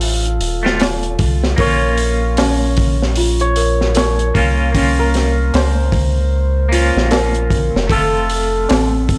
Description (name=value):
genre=trip hop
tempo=76 BPM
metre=4/4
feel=swing 60% on 16ths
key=Bb harmonic minor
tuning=A4 = 440 Hz
part: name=santur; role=melody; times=0.0-9.2 s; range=F4 to Db5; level=-25 LUFS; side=equal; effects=dub echo
part: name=clean electric guitar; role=accompaniment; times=0.0-9.2 s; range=A3 to F4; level=-24 LUFS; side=equal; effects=tremolo, tape echo
part: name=soft dub sub bass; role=bass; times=0.0-9.2 s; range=Eb1 to Db2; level=-20 LUFS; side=equal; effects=none
part: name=crunchy breakbeat drum kit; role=drums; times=0.0-9.2 s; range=hi-hat, kick drum, snare drum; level=-21 LUFS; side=equal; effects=none
part: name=tabla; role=percussion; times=0.8-8.9 s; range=none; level=-29 LUFS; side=equal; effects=none
part: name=celesta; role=arpeggios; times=1.6-9.2 s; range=C4 to Bb4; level=-24 LUFS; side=equal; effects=vintage 12-bit sampler grit, tape echo
room=little or no reverb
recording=dry, gritty hardware recording, cassette tape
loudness=-15 LUFS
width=mono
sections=0.0-9.2 A section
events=none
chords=0.0 F; 1.6 Bbm; 7.9 F